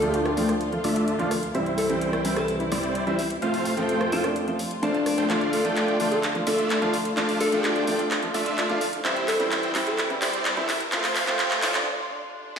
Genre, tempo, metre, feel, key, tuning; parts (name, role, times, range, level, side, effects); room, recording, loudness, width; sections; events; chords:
EDM, festival progressive house; 128 BPM; 4/4; straight; D minor; A4 = 440 Hz
warm alto saxophone; melody; 0.0-11.9 s; D4 to A4; -29 LUFS; left 1 dB; digital delay
warm baby grand piano; accompaniment; 0.0-11.9 s; E3 to F4; -29 LUFS; right 1 dB; digital delay
dark chamber string section; sustained chords; 0.0-12.6 s; C2 to F4; -32 LUFS; left 1 dB
dense compressed supersaw; riff; 0.0-11.8 s; G3 to A5; -26 LUFS; equal; low-pass filter, digital delay
big-room dance drum kit; drums; 0.0-12.6 s; handclaps, hi-hat, rim click, snare drum; -29 LUFS; right 1 dB; small room reverb
riser and swell; sound effects; 8.4-12.6 s; -38 LUFS; equal
wet digital room reverb, RT60 1.1 s; played on a big sound system in a bare room, stone room reverb, high-pass filter; -22 LUFS; side -6 dB against mid
0.0-12.6 A section
build-up 0.0-12.6; filter sweep on supersaw synth 0.0-12.6; filter sweep 0.0-12.6; drum fill 5.3-11.9; break 11.9-12.6; swell 11.9-12.6
0.0 Dm; 1.5 C; 3.4 F; 5.3 Dm; 9.0 C; 10.9 F